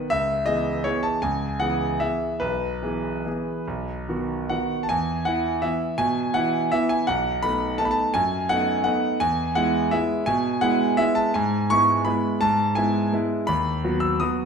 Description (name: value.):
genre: classical, piano waltz.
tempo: 137-176 BPM.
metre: 3/4.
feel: rubato.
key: E major.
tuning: A4 = 440 Hz.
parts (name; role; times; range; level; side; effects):
clear concert grand piano; solo; 0.0-14.5 s; B1 to E6; -21 LUFS; equal; none.
room: wet recital hall reverb, RT60 1.4 s.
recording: minimal, uncompressed stereo recording.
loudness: -21 LUFS.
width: side -6 dB against mid.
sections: 0.0-4.9 A section; 4.9-14.5 B section.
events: none.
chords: 0.1 C#m7; 2.4 E/B; 3.7 B; 4.9 E; 7.1 B7; 9.2 E; 11.3 E/G#; 13.5 B/D#.